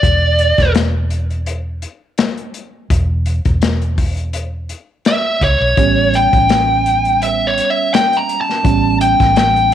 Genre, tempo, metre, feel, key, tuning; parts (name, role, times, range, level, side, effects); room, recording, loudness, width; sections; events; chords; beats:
straight-eighth soul blues; 84 BPM; 4/4; swing 55% on 16ths; A4 = 440 Hz
biting lead guitar; melody; 0.0-0.7, 5.1-9.7 s; C#5 to A#5; -14 LUFS; equal; overdrive
vintage muted fingered electric bass; bass; 0.0-9.7 s; E1 to C#2; -17 LUFS; equal
crunchy breakbeat drum kit; drums; 0.0-9.7 s; hi-hat, kick drum, snare drum; -17 LUFS; left 3 dB
barky tine electric piano; accompaniment; 5.8-9.7 s; G3 to C#4; -20 LUFS; right 16 dB; lush chorus
light reverb, studio reverb; 1960s-style stereo; -12 LUFS; side -10 dB against mid
0.0-9.7 A section
0.0 E5; 5.8 A9
| 0.03 0.75 1.47 2.18 | 2.90 3.62 4.34 5.06 | 5.78 6.49 7.21 7.93 | 8.65 9.37